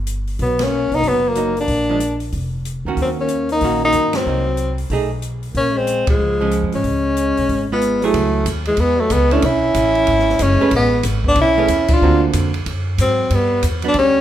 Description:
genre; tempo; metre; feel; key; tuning
jazz, small-group swing and bop; 186 BPM; 4/4; swing 63% on 8ths; Bb minor, F# minor from 8.1 s; A4 = 439 Hz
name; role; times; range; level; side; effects
upright bass; bass; 0.0-14.2 s; F1 to Ab2; -21 LUFS; equal; none
open jazz drum kit; drums; 0.1-14.0 s; crash cymbal, hi-hat, kick drum, ride cymbal, snare drum; -26 LUFS; equal; none
warm tenor saxophone; melody; 0.4-14.2 s; Ab3 to E#4; -17 LUFS; left 1 dB; none
breathy trombone; second line; 0.4-14.2 s; E3 to D4; -25 LUFS; right 3 dB; none
archtop guitar, miked and amplified; accompaniment; 1.4-13.9 s; D3 to B4; -22 LUFS; right 6 dB; none
room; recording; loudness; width
moderate large studio reverb, RT60 1.3 s; minimal, uncompressed stereo recording; -15 LUFS; side -11 dB against mid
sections
0.0-8.1 A section; 8.1-14.2 B section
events
band accent 0.6, 4.1, 6.0, 11.9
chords
0.4 Bmaj7; 1.7 Bb; 3.0 Ebm7; 4.3 Cm7b5; 4.9 B6; 5.6 Bbm7; 6.8 Db7; 8.1 F#m9; 9.4 B9sus4; 10.1 Eadd9; 10.7 Amaj9; 12.0 D7alt; 13.3 G

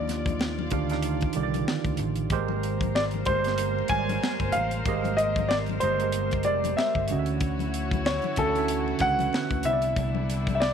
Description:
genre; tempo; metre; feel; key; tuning
R&B, neo-soul; 94 BPM; 4/4; swing 60% on 16ths; unclear; A4 = 440 Hz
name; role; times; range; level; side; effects
clear grand piano; melody; 0.0-10.7 s; A4 to Ab5; -27 LUFS; left 1 dB; tape echo
tine electric piano; accompaniment; 0.0-10.7 s; C3 to F5; -30 LUFS; right 11 dB; overdrive, auto-pan
warm chamber string section; sustained chords; 0.0-10.7 s; D3 to D5; -36 LUFS; left 2 dB; none
fretless electric bass; bass; 0.0-10.7 s; F1 to Eb2; -30 LUFS; left 2 dB; analog chorus
tight funk drum kit; drums; 0.1-10.7 s; hi-hat, kick drum, snare drum; -31 LUFS; left 1 dB; none
congas; percussion; 0.1-10.6 s; none; -37 LUFS; left 16 dB; none
room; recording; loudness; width
small room ambience; 1960s-style stereo with parts hard left and right; -24 LUFS; side -7 dB against mid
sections
0.0-10.7 A section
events
none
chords
0.0 Ebmaj9; 2.3 Abmaj9; 7.1 Dmaj9; 9.6 Cmaj9

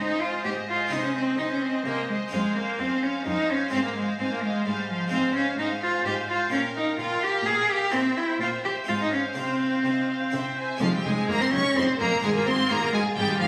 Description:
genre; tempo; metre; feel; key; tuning
classical, baroque-style concerto movement with solo episodes; 128 BPM; 3/4; straight; F minor from 5.1 s; A4 = 440 Hz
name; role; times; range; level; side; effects
rich cello; melody; 0.0-13.5 s; F3 to Ab4; -27 LUFS; equal; none
rich chamber violin section; melody; 0.0-13.5 s; Eb5 to Db6; -37 LUFS; equal; none
dark chamber violin section; second line; 0.0-13.5 s; F4 to F5; -37 LUFS; equal; none
harpsichord; accompaniment; 0.0-13.5 s; F2 to F4; -39 LUFS; equal; none
rich chamber viola section; accompaniment; 0.0-13.5 s; Ab3 to C5; -36 LUFS; equal; none
rich studio cello section; bass; 0.0-13.5 s; F2 to C3; -37 LUFS; equal; none
warm chamber double bass section; bass; 10.8-13.5 s; F1 to Ab1; -36 LUFS; equal; none
room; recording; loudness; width
moderate recital hall reverb, RT60 1.6 s; recorded on a phone in the room, studio reverb; -25 LUFS; mono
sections
0.0-10.8 A section; 10.8-13.5 B section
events
none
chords
0.0 Ab; 0.9 Ab/C; 2.3 Fm; 3.7 Fm/Ab; 6.5 Bb5; 7.9 C7/Bb; 8.9 Fm/Ab; 9.4 Csus4; 10.3 C; 10.8 Fm; 12.2 Fm/Ab

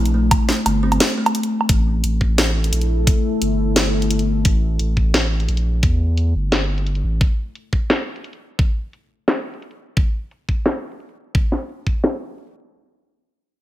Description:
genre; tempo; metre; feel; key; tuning
half-time drum and bass; 174 BPM; 4/4; half-time; unclear; A4 = 437 Hz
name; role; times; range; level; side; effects
kalimba; arpeggios; 0.0-1.3 s; A3 to E4; -24 LUFS; left 1 dB; vintage 12-bit sampler grit, tape echo
saturated sub bass; bass; 0.0-7.2 s; G1 to E2; -19 LUFS; equal; none
drum and bass drum kit; drums; 0.1-12.5 s; hi-hat, snare drum, woodblock; -19 LUFS; equal; low-pass filter on perc, studio reverb, low-pass filter on hats, low-pass filter on snare
electronic kick drum; drums; 0.3-11.9 s; none; -18 LUFS; equal; studio reverb
deep dark ambient pad; sustained chords; 2.5-4.4 s; A3 to A4; -25 LUFS; left 3 dB; chorus, built-in reverb, sidechain pumping
room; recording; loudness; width
light reverb; none; -17 LUFS; side -14 dB against mid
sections
0.0-1.7 A section; 1.7-12.7 B section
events
drop 0.0-1.7; filter sweep on drum 1.7-12.7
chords
0.0 A5

